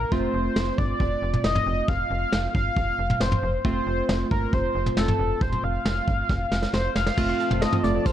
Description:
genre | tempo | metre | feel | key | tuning
synth-pop | 136 BPM | 4/4 | straight | unclear | A4 = 440 Hz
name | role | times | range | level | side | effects
octave-doubled lead | melody | 0.0-8.1 s | A4 to F5 | -26 LUFS | equal | chorus, tape echo
warm analog keys | accompaniment | 0.0-8.1 s | A3 to F4 | -30 LUFS | right 1 dB | chorus
slap-like FM bass | bass | 0.0-8.1 s | F1 to G1 | -28 LUFS | equal | none
vintage brush drum kit | drums | 0.1-8.1 s | crash cymbal, hi-hat, kick drum, snare drum, toms | -26 LUFS | equal | none
chorused pulse-width pad | sustained chords | 7.2-8.1 s | F4 to A5 | -32 LUFS | equal | none
wide unison pluck | arpeggios | 7.2-8.1 s | F3 to F6 | -31 LUFS | right 3 dB | none
room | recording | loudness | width
light reverb, small room ambience | dark, warm production | -22 LUFS | side -11 dB against mid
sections
0.0-7.2 A section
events
drum fill 6.3-7.2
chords
0.1 F

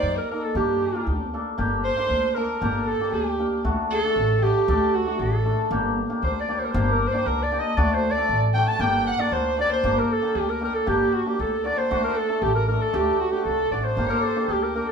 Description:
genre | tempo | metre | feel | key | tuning
klezmer | 116 BPM | 2/4 | straight | G harmonic minor | A4 = 440 Hz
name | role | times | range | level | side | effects
warm clarinet | melody | 0.0-14.9 s | F#4 to A5 | -24 LUFS | right 1 dB | none
dark violin | second line | 0.0-14.9 s | F#4 to A5 | -30 LUFS | right 3 dB | none
cimbalom | accompaniment | 0.0-14.9 s | A3 to Bb4 | -26 LUFS | left 1 dB | none
upright bass | bass | 0.0-14.8 s | G1 to G2 | -27 LUFS | equal | none
room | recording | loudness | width
wet large studio reverb, RT60 0.9 s | band playing live in one room | -20 LUFS | side -6 dB against mid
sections
0.0-1.6 A section; 1.6-9.8 B section; 9.8-14.9 C section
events
clarinet solo 1.6-9.8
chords
0.0 Eb; 0.6 Gm; 3.7 D; 5.7 Gm; 7.8 D; 8.8 Gm; 11.9 D; 14.0 Gm

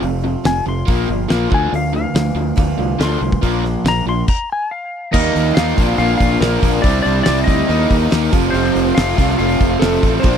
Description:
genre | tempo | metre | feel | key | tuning
classic rock | 141 BPM | 4/4 | straight | F mixolydian | A4 = 442 Hz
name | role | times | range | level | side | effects
clean lap steel guitar | melody | 0.0-10.4 s | A4 to C6 | -22 LUFS | left 4 dB | none
picked swing-style acoustic guitar | accompaniment | 0.0-10.4 s | F2 to D5 | -27 LUFS | right 12 dB | none
raw garage guitar | riff | 0.0-10.4 s | F2 to E4 | -21 LUFS | left 15 dB | overdrive
raw garage guitar | riff | 0.0-10.4 s | F2 to Eb4 | -22 LUFS | right 17 dB | overdrive
growling fingered electric bass | bass | 0.0-10.4 s | F1 to Eb2 | -20 LUFS | equal | overdrive
damped 70s drum kit | drums | 0.0-10.3 s | crash cymbal, hi-hat, kick drum, snare drum | -18 LUFS | equal | none
octave-fuzz lead guitar | second line | 5.1-10.4 s | A3 to F4 | -26 LUFS | right 5 dB | none
distorted electric guitar | riff | 5.1-10.4 s | F2 to Eb4 | -21 LUFS | equal | distortion
room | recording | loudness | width
little or no reverb | dry, close 1970s-style studio recording | -14 LUFS | side -8 dB against mid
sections
0.0-5.1 A section; 5.1-10.4 B section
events
electric slide guitar solo 0.0-5.1; stop 4.3-5.1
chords
0.0 F; 0.9 Bb; 1.5 Dm; 3.4 Bb; 5.1 Eb; 5.8 Bbadd9; 6.8 Cadd9; 7.7 Eb; 8.3 F

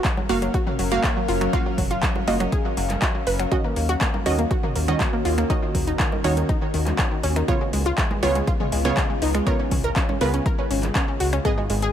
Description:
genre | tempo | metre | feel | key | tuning
progressive house | 121 BPM | 4/4 | straight | unclear | A4 = 437 Hz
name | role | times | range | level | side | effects
evolving wavetable pad | sustained chords | 0.0-11.9 s | C#3 to E#5 | -30 LUFS | left 2 dB | chorus, built-in reverb, sidechain pumping
analog pluck | arpeggios | 0.0-11.9 s | D#3 to B4 | -27 LUFS | equal | chorus, sidechain pumping, tape echo
wide unison pluck | stabs | 0.0-11.9 s | G#2 to E#5 | -27 LUFS | right 3 dB | sidechain pumping, tape echo
deep house drum kit | drums | 0.0-11.9 s | finger snaps, handclaps, hi-hat | -29 LUFS | equal | overdrive
electronic kick drum | drums | 0.0-11.6 s | none | -24 LUFS | equal | overdrive
electronic congas and toms | percussion | 0.2-10.9 s | none | -33 LUFS | right 4 dB | sidechain pumping on perc, sidechain pumping on toms
round analog bass | bass | 0.3-11.9 s | F#1 to D#2 | -25 LUFS | equal | sidechain pumping
room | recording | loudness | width
little or no reverb | none | -20 LUFS | side -10 dB against mid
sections
0.0-11.9 A section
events
none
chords
0.0 F#maj7; 3.5 D#m7; 7.5 C#7

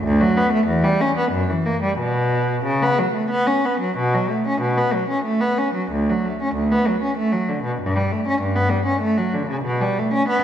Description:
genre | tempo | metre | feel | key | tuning
classical, baroque-style suite movement for unaccompanied cello | 88-98 BPM | 3/4 | rubato | B minor | A4 = 439 Hz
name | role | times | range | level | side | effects
rich cello | solo | 0.0-10.4 s | D2 to C#4 | -18 LUFS | equal | none
room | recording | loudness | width
wet scoring stage reverb, RT60 1.5 s | nothing above 10.6 kHz | -18 LUFS | side -10 dB against mid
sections
0.0-4.0 A section; 4.0-10.4 B section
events
none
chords
none

